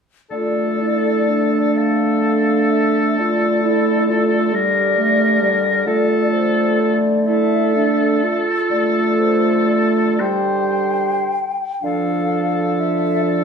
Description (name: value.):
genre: classical, slow romantic movement for wind quintet.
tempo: 35-46 BPM (dotted quarters).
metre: 6/8.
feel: rubato.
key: D minor.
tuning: A4 = 440 Hz.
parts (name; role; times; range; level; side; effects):
mellow hollow silver concert flute; melody; 0.3-13.4 s; C5 to G5; -24 LUFS; left 6 dB; none.
clear oboe; second line; 0.3-13.4 s; A4 to C5; -22 LUFS; left 2 dB; none.
dark French horn; accompaniment; 0.3-13.4 s; F3 to A3; -20 LUFS; left 1 dB; none.
dark clarinet; accompaniment; 0.3-13.4 s; D4 to G4; -21 LUFS; right 5 dB; none.
mellow bassoon; bass; 0.3-13.4 s; D3; -23 LUFS; right 2 dB; none.
room: wet stone room reverb, RT60 1.1 s.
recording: heard from further back in the room.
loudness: -15 LUFS.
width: side -6 dB against mid.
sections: 0.3-11.8 A section; 11.8-13.4 B section.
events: none.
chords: 0.3 Dm.